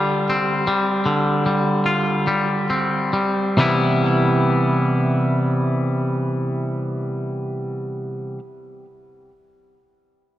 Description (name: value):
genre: rock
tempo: 44-54 BPM (dotted quarters)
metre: 6/8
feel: straight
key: C major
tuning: A4 = 440 Hz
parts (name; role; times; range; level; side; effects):
- twangy electric guitar; arpeggios; 0.0-8.4 s; C3 to F4; -18 LUFS; equal; spring reverb, tape echo
room: moderate concert hall reverb, RT60 2.1 s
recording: dark, warm production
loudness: -18 LUFS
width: side -13 dB against mid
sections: 0.0-3.6 A section; 3.6-9.0 B section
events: slowing down 0.0-3.6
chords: 0.0 G7sus4/D; 3.6 Cmaj7